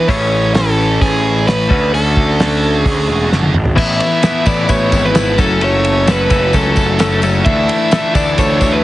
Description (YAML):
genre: indie rock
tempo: 130 BPM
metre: 4/4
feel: straight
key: A major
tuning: A4 = 440 Hz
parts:
  - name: overdriven electric guitar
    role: melody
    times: 0.0-8.8 s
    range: G#4 to E5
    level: -17 LUFS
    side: equal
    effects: none
  - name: high-gain distorted guitar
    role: riff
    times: 0.0-8.8 s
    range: F#2 to F#4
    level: -21 LUFS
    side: right 5 dB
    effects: distortion, wide subtle chorus, tape echo
  - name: twelve-string electric guitar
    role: riff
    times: 0.0-8.8 s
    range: E3 to A4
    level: -18 LUFS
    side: left 5 dB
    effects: spring reverb
  - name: fuzz picked electric bass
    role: bass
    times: 0.0-8.8 s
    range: E1 to D2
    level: -16 LUFS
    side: equal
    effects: overdrive
  - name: cloth-damped thuddy drum kit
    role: drums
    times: 0.1-8.7 s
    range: crash cymbal, hi-hat, kick drum, ride cymbal, snare drum, toms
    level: -17 LUFS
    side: equal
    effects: none
  - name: tambourine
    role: percussion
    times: 4.0-8.7 s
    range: none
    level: -32 LUFS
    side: left 8 dB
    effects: none
room: light reverb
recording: heavily compressed radio sound, multiband compression, nothing above 10.4 kHz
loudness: -11 LUFS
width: side -15 dB against mid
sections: 0.0-3.8 A section; 3.8-8.8 B section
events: drum fill 3.3-3.8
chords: 0.1 Amaj7; 1.7 Dmaj7; 3.8 Asus2; 5.4 F#m; 7.5 Dsus2